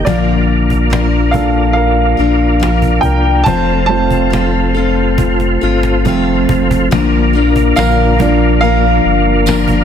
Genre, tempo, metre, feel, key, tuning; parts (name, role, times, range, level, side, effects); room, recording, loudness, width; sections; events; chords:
pop ballad; 71 BPM; 4/4; straight; Bb major; A4 = 440 Hz
warm baby grand piano; accompaniment; 0.0-9.8 s; F3 to A5; -16 LUFS; right 3 dB
tonewheel organ; sustained chords; 0.0-9.8 s; A3 to F4; -17 LUFS; right 1 dB; chorus vibrato, fast rotary speaker
sub bass with octave; bass; 0.0-9.8 s; F1 to C2; -15 LUFS; equal
picked steel-string acoustic guitar; arpeggios; 0.1-9.8 s; Bb2 to Bb4; -16 LUFS; left 8 dB
cajon; drums; 0.1-9.8 s; -20 LUFS; right 1 dB
tambourine; percussion; 7.8-9.7 s; -27 LUFS; right 13 dB
light reverb, small room ambience; dense, heavily limited modern master; -10 LUFS; side -8 dB against mid
0.0-6.9 A section; 6.9-9.8 B section
grand piano solo 0.0-6.9, 6.9-9.8; drum fill 5.2-6.9
0.1 Bb; 3.5 F; 6.9 Bb